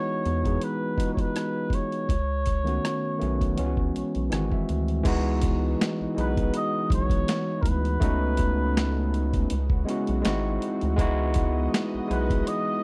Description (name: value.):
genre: R&B, neo-soul.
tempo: 81 BPM.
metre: 4/4.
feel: swing 54% on 16ths.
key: C# minor.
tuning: A4 = 439 Hz.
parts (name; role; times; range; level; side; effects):
trumpet with cup mute; melody; 0.0-12.8 s; A#4 to D#5; -34 LUFS; equal; none.
overdriven tine electric piano; accompaniment; 0.0-12.8 s; D#3 to G#5; -30 LUFS; equal; none.
rubbery square bass; bass; 0.3-12.4 s; G#1 to E2; -29 LUFS; equal; none.
boom bap sampler-style drum kit; drums; 0.3-12.7 s; crash cymbal, hi-hat, kick drum, rim click, snare drum; -29 LUFS; equal; none.
lush unison pad; sustained chords; 5.1-12.8 s; C#3 to D#5; -40 LUFS; equal; none.
room: little or no reverb.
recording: dry, close 1970s-style studio recording.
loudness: -26 LUFS.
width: mono.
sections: 0.0-5.1 A section; 5.1-12.8 B section.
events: tine electric piano fill 3.9-5.1.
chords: 0.0 C#m11; 2.1 B9/C#; 3.6 E69/C#; 4.3 G#7b13; 5.1 C#m11; 8.0 B9/C#; 9.5 E69/C#; 10.2 G#7b13; 11.0 C#m11.